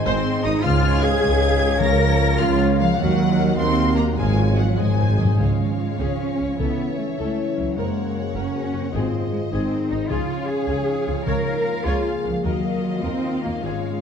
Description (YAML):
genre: cinematic, heroic adventure film score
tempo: 102 BPM (dotted quarters)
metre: 6/8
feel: straight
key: Db major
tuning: A4 = 440 Hz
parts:
  - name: rich studio violin section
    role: melody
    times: 0.0-14.0 s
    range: Eb5 to Bb6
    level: -34 LUFS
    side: left 5 dB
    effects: none
  - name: clear symphonic violin section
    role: second line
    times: 0.0-14.0 s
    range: C5 to Bb6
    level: -31 LUFS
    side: left 3 dB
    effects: none
  - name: warm symphonic viola section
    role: accompaniment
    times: 0.0-13.8 s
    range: C4 to Ab5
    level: -32 LUFS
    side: left 3 dB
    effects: none
  - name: dark French horn section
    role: sustained chords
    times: 0.0-14.0 s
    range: Db4 to F5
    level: -29 LUFS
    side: left 5 dB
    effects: none
  - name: warm trombone section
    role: sustained chords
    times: 0.0-14.0 s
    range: Ab2 to F4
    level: -29 LUFS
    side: right 3 dB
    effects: none
  - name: concert harp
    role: arpeggios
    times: 0.0-14.0 s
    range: Gb2 to Ab5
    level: -28 LUFS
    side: left 7 dB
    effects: none
  - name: mellow tuba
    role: bass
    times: 0.1-5.3 s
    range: Ab1 to Eb2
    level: -25 LUFS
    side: right 3 dB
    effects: none
  - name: rich symphonic double bass section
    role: bass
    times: 0.1-13.7 s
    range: Gb1 to Eb2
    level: -25 LUFS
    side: right 2 dB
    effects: none
  - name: warm symphonic cello section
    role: bass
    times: 0.1-14.0 s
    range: F3 to Bb4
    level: -25 LUFS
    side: right 1 dB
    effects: none
  - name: timpani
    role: percussion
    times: 1.8-2.4, 4.8-7.1, 10.1-11.8 s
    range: Ab2 to Db3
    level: -27 LUFS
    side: equal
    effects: none
room: wet scoring stage reverb, RT60 1.8 s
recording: dark, warm production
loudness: -18 LUFS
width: side -7 dB against mid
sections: 0.0-5.4 A section; 5.4-14.0 B section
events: timpani fill 4.8-5.4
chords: 0.0 Ab; 0.6 Db; 1.8 Bbm/Db; 3.0 Ebmadd9; 4.2 Db/Ab; 4.8 Ab; 5.4 Db; 6.6 A/C#; 7.8 Gbadd9; 8.9 Ab; 10.1 Db; 11.3 Bbm/Db; 12.4 Ebmadd9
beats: 0.06 | 0.64 1.22 | 1.80 2.39 | 2.99 3.58 | 4.18 4.78 | 5.39 5.99 | 6.58 7.18 | 7.77 8.35 | 8.93 9.52 | 10.10 10.68 | 11.27 11.85 | 12.44 13.03 | 13.63